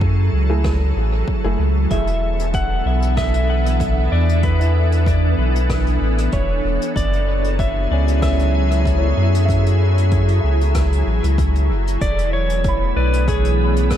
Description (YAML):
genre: ambient dub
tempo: 95 BPM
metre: 4/4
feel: swing 54% on 16ths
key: E mixolydian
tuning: A4 = 442 Hz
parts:
  - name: soft additive organ-like pad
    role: sustained chords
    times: 0.0-14.0 s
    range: E3 to A4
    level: -23 LUFS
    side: equal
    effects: ensemble chorus, built-in reverb
  - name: soft dub sub bass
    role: bass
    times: 0.0-14.0 s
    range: E1 to F#2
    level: -17 LUFS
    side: equal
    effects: none
  - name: electronic kick drum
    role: drums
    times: 0.0-14.0 s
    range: none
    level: -23 LUFS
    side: equal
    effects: overdrive
  - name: warm upright piano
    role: stabs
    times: 0.5-1.6 s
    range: A3 to G#4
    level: -29 LUFS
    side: equal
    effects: dub echo
  - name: vintage brush drum kit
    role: drums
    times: 0.6-14.0 s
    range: hi-hat, rim click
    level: -35 LUFS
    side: left 1 dB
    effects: dub echo
  - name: clean lap steel guitar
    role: melody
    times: 1.9-14.0 s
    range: G#4 to F#5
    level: -25 LUFS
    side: equal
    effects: ping-pong delay
  - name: felt-muted upright piano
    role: arpeggios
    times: 4.6-14.0 s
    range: C#4 to B5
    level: -29 LUFS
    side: equal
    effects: ping-pong delay
room: light reverb, studio ambience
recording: none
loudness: -15 LUFS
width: side -10 dB against mid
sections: 0.0-12.0 A section; 12.0-14.0 B section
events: none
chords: 0.0 F#m9; 1.9 E7sus4; 7.0 F#m9; 12.0 E7sus4